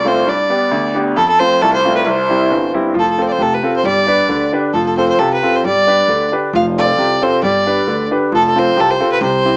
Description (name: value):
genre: celtic folk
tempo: 134 BPM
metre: 2/4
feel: swing 53% on 8ths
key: unclear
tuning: A4 = 440 Hz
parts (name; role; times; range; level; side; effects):
- clear fiddle; melody; 0.0-9.6 s; A4 to F5; -14 LUFS; equal; cassette tape
- bright concert grand piano; accompaniment; 0.0-9.6 s; G1 to B4; -15 LUFS; equal; cassette tape
- upright bass; bass; 2.9-9.6 s; F1 to D2; -23 LUFS; equal; none
room: moderate studio reverb, RT60 0.6 s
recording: home recording on cassette, small speaker sound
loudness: -11 LUFS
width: side -31 dB against mid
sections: 0.0-3.0 A section; 3.0-9.6 A section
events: none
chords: 0.3 G; 1.2 F; 2.1 C; 3.0 F; 3.8 G; 4.7 F; 5.6 G; 6.5 F; 7.4 G; 8.3 F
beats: | 0.26 0.71 | 1.16 1.61 | 2.05 2.50 | 2.95 3.40 | 3.85 4.29 | 4.74 5.19 | 5.64 6.08 | 6.53 6.98 | 7.43 7.88 | 8.32 8.77 | 9.22